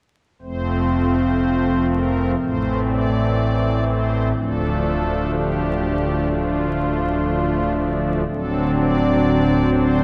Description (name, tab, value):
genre	classical, chorale-style piece for pipe organ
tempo	61 BPM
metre	4/4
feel	rubato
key	unclear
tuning	A4 = 437 Hz
part	pipe organ, strings celeste	solo	0.4-10.0 s	D1 to D5	-20 LUFS	equal	none
room	wet church reverb, RT60 3.3 s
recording	vinyl crackle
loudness	-20 LUFS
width	mono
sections	0.4-10.0 A section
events	none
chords	0.4 F; 2.4 Am; 4.4 Dm; 8.3 D7